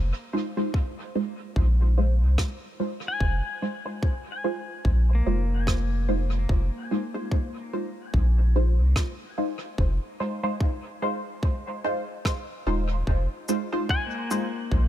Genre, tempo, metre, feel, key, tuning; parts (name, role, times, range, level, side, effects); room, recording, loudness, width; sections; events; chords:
ambient dub; 73 BPM; 4/4; swing 57% on 16ths; F minor; A4 = 440 Hz
pedal steel guitar; arpeggios; 0.0-14.9 s; Bb3 to Ab5; -33 LUFS; left 3 dB; dub echo
soft dub sub bass; bass; 0.0-14.9 s; Eb1 to C2; -22 LUFS; equal
filtered dub chord stab; stabs; 0.3-14.5 s; Ab3 to C5; -30 LUFS; right 1 dB; phaser, wide subtle chorus, dub echo
electronic kick drum; drums; 0.7-14.9 s; -26 LUFS; equal
rim click and cabasa; drums; 2.4-14.5 s; -37 LUFS; right 1 dB; dub echo
small room ambience; -24 LUFS; side -12 dB against mid
0.0-14.9 A section
0.0 Fm7